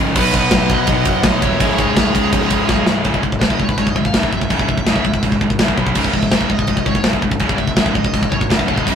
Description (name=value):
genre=heavy metal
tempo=165 BPM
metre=4/4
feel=straight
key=C# minor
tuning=A4 = 440 Hz
part: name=crunchy overdriven guitar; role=riff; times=0.0-3.1, 8.8-8.9 s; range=C#2 to B3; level=-23 LUFS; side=left 1 dB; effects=none
part: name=high-gain distorted guitar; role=riff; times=0.0-8.9 s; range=C#2 to B3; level=-22 LUFS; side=left 4 dB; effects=distortion
part: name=scooped high-gain guitar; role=riff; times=0.0-8.9 s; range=C#2 to B3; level=-22 LUFS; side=right 7 dB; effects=distortion
part: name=fuzz picked electric bass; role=bass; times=0.0-8.9 s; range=C#1 to B1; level=-23 LUFS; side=equal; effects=overdrive
part: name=high-gain lead guitar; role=melody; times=0.2-8.9 s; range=B4 to F#5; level=-24 LUFS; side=left 1 dB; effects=distortion
part: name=high-gain lead guitar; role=second line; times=0.2-2.8 s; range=G#4 to D#5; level=-22 LUFS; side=right 3 dB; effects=distortion
part: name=tight metal drum kit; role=drums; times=0.2-8.9 s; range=china cymbal, crash cymbal, kick drum, ride cymbal, snare drum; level=-17 LUFS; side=equal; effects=none
room=light reverb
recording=rough rehearsal-room recording, tube saturation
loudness=-13 LUFS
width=side -8 dB against mid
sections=0.0-3.1 A section; 3.1-8.9 B section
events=drum fill 2.7-3.1; lead electric guitar solo 3.1-8.9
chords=0.2 B; 1.6 C#5; 5.8 B5; 6.0 C#m; 8.5 G5; 8.7 D5